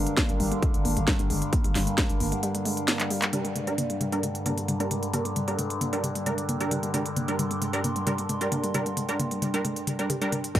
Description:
driving peak-time techno; 133 BPM; 4/4; straight; G minor; A4 = 440 Hz
growling 808-style bass; bass; 0.0-2.3 s; G1; -30 LUFS; equal; overdrive, sidechain pumping, low-pass filter
overtone-sweeping drone; drone; 0.0-10.6 s; G2 to D3; -32 LUFS; left 1 dB; chorus, built-in reverb, phaser, sidechain pumping
warbly tape-like pad; texture; 0.0-10.6 s; D4 to C6; -36 LUFS; right 3 dB; chorus, built-in reverb, sidechain pumping
techno drum kit; drums; 0.1-10.6 s; crash cymbal, handclaps, hi-hat, snare drum, toms; -29 LUFS; equal; sidechain pumping on hats, sidechain pumping on toms, sidechain pumping on cymbals
warbly dusty pluck; riff; 0.2-10.6 s; G3 to G4; -32 LUFS; equal; chorus, tube saturation, sidechain pumping, analog delay
electronic kick drum; drums; 0.2-2.1, 10.6 s; -26 LUFS; equal
rave stab; stabs; 3.3-10.6 s; G3 to Bb4; -31 LUFS; right 2 dB; chorus, built-in reverb, sidechain pumping, analog delay
little or no reverb; dry, gritty hardware recording; -24 LUFS; side -12 dB against mid
0.0-3.3 A section; 3.3-10.6 B section
drum fill 3.0-3.3; band accent 3.2; filter sweep on synth stab 3.3-10.6
0.0 Gm

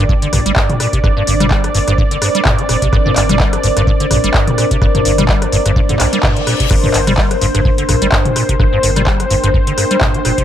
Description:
acid house; 127 BPM; 4/4; swing 56% on 16ths; G minor; A4 = 440 Hz
warm analog pad; sustained chords; 0.0-10.4 s; C5 to D5; -20 LUFS; right 1 dB; chorus, sidechain pumping
acid bass, square; riff; 0.0-10.4 s; G2 to G3; -17 LUFS; equal; ensemble chorus, dub echo
saturated sub bass; bass; 0.0-10.4 s; F1 to G2; -20 LUFS; equal; sidechain pumping
deep dark ambient pad; texture; 0.0-10.4 s; D4 to G5; -20 LUFS; left 1 dB; chorus, built-in reverb, sidechain pumping
electronic kick drum; drums; 0.1-10.4 s; -15 LUFS; equal
electro analog drum machine; drums; 0.2-10.4 s; crash cymbal, handclaps, hi-hat, rim click, toms; -18 LUFS; left 1 dB
reverse cymbal; sound effects; 6.0-6.7 s; -24 LUFS; left 7 dB
little or no reverb; -11 LUFS; side -10 dB against mid
0.0-10.4 A section
reverse cymbal 6.0-6.7
0.0 Gm

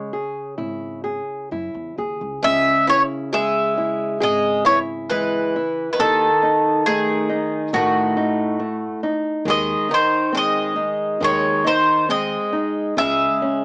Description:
fado-style ballad; 68 BPM; 4/4; rubato; C# minor; A4 = 440 Hz
mandolin; melody; 0.0-13.6 s; F#4 to E5; -18 LUFS; equal; cassette tape
nylon-string guitar; accompaniment; 0.0-13.6 s; C#3 to G#4; -24 LUFS; equal; cassette tape
upright bass; bass; 0.6-13.3 s; G#1 to A2; -31 LUFS; equal
picked twelve-string acoustic guitar; second line; 2.4-13.6 s; A2 to G#3; -25 LUFS; equal; cassette tape
moderate small room ambience, RT60 0.5 s; home recording on cassette, small speaker sound; -17 LUFS; side -36 dB against mid
0.0-2.4 A section; 2.4-13.6 A section
0.0 C#m; 6.0 D#dim; 9.5 G#/D#; 13.0 C#m

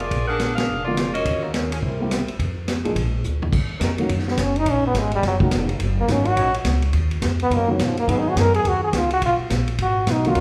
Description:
jazz, big band swing; 211 BPM; 4/4; swing 62% on 8ths; Eb minor; A4 = 442 Hz
mellow saxophone section; melody; 0.0-2.4 s; F3 to Gb5; -27 LUFS; equal
upright bass; bass; 0.0-10.4 s; F1 to Bb2; -26 LUFS; equal
vintage drum kit; drums; 0.0-10.4 s; crash cymbal, hi-hat, kick drum, ride cymbal, snare drum, toms; -28 LUFS; equal
warm baby grand piano; accompaniment; 0.9-10.4 s; D3 to Ab4; -28 LUFS; equal
clear trombone section; sustained chords; 3.8-10.4 s; Gb3 to Db5; -34 LUFS; equal
bright trombone; melody; 4.3-10.4 s; Db3 to Bb4; -23 LUFS; equal
wet recital hall reverb, RT60 1.4 s; heard from further back in the room; -21 LUFS; mono
0.0-3.5 A section; 3.5-10.4 B section
band accent 0.5; drum fill 3.2; trombone solo 3.5-10.4
0.0 Bb7; 1.3 Ebm7; 1.8 C7; 2.4 Bb7; 3.0 Bb; 3.5 Ebm7; 8.1 Abm7

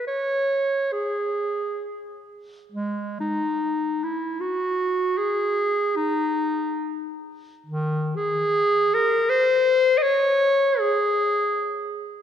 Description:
classical, free, expressive piece for unaccompanied clarinet; free time; A4 = 436 Hz
bright clarinet; solo; 0.0-12.0 s; Eb3 to Eb5; -21 LUFS; equal
wet church reverb, RT60 2.4 s; dark, warm production; -21 LUFS; side -9 dB against mid
0.0-12.2 A section

